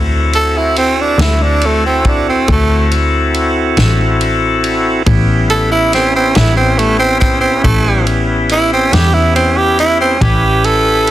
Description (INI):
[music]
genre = slow blues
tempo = 47 BPM (dotted quarters)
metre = 12/8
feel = straight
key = unclear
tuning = A4 = 439 Hz
[part]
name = bright tonewheel organ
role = sustained chords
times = 0.0-11.1 s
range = B3 to B4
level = -16 LUFS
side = left 1 dB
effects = slow rotary speaker
[part]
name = clear double bass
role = bass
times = 0.0-11.1 s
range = A1 to E2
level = -15 LUFS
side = equal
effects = none
[part]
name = growling tenor saxophone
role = second line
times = 0.3-11.1 s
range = A3 to A4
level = -13 LUFS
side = right 2 dB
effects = plate reverb
[part]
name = vintage drum kit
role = drums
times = 0.3-11.1 s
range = kick drum, ride cymbal, snare drum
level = -19 LUFS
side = equal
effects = none
[sound]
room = light reverb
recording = dense, heavily limited modern master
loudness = -10 LUFS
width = side -13 dB against mid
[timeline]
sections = 0.0-11.1 A section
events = tenor saxophone solo 0.0-11.1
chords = 0.0 D7; 5.1 A7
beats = 1.20 2.49 3.78 | 5.07 6.36 7.64 8.93 | 10.22